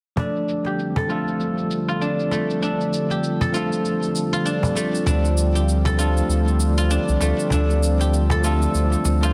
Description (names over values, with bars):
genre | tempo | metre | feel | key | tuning
organic downtempo | 98 BPM | 4/4 | swing 58% on 16ths | D minor | A4 = 439 Hz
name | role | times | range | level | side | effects
bell-like tine electric piano | accompaniment | 0.2-9.3 s | F3 to C5 | -26 LUFS | equal | low-pass filter, digital delay
warm analog pad | sustained chords | 0.2-9.3 s | D3 to D5 | -30 LUFS | equal | chorus, tremolo
guzheng | arpeggios | 0.2-9.3 s | A3 to A4 | -28 LUFS | equal | low-pass filter, digital delay
cabasa | drums | 0.2-9.3 s | none | -36 LUFS | equal | low-pass filter on perc
cajon | percussion | 0.2-9.3 s | none | -28 LUFS | equal | none
warm sub bass | bass | 5.1-9.3 s | C2 to D2 | -22 LUFS | equal | none
room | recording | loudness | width
moderate lush hall reverb, RT60 2.2 s | dense, heavily limited modern master | -21 LUFS | mono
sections
0.2-9.3 A section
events
filter sweep on guzheng 0.2-9.3; filter sweep on tine electric piano 0.2-9.3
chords
0.2 Dm